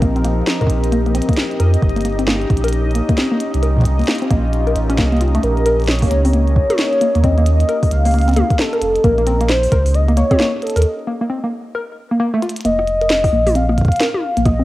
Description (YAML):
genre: IDM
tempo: 133 BPM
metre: 4/4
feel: swing 62% on 16ths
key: unclear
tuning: A4 = 441 Hz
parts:
  - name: warbly tape-like pad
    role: sustained chords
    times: 0.0-10.8 s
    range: F3 to Bb4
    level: -25 LUFS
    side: left 1 dB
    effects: chorus, built-in reverb, cassette tape
  - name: warbly dusty pluck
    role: arpeggios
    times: 0.0-14.6 s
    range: A3 to Bb4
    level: -21 LUFS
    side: left 1 dB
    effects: chorus, cassette tape, tape echo
  - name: warm sub bass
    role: bass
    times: 0.0-14.6 s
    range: F1 to F2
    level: -16 LUFS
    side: equal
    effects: none
  - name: electronic kick drum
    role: drums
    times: 0.0-10.4, 13.2-14.6 s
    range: none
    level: -16 LUFS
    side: equal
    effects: overdrive, studio reverb, cassette tape
  - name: glitchy drum kit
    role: drums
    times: 0.0-14.6 s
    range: hi-hat, rim click, snare drum, toms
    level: -22 LUFS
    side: equal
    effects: overdrive, studio reverb, cassette tape
  - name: bubbling stepped-filter texture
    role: texture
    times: 0.0-10.8 s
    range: Eb4 to Eb5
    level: -29 LUFS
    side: left 1 dB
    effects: chorus, built-in reverb, cassette tape
  - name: warm velvety synth lead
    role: melody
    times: 5.4-14.6 s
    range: A4 to F5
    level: -18 LUFS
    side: equal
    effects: chorus, cassette tape, analog delay
room: moderate spring reverb, RT60 1.5 s, digital ambience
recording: home recording on cassette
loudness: -14 LUFS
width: side -16 dB against mid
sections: 0.0-12.7 A section; 12.7-14.6 A section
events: break 10.8-12.7; drum fill 12.4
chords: 0.0 F9sus4; 1.8 Eb9/G; 5.4 Bbm6; 12.7 F7sus4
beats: | 0.02 0.47 0.92 1.37 | 1.82 2.27 2.73 3.18 | 3.63 4.08 4.53 4.98 | 5.43 5.88 6.33 6.79 | 7.24 7.69 8.14 8.59 | 9.04 9.49 9.94 10.39 | 10.85 11.30 11.75 12.20 | 12.65 13.10 13.55 14.00 | 14.46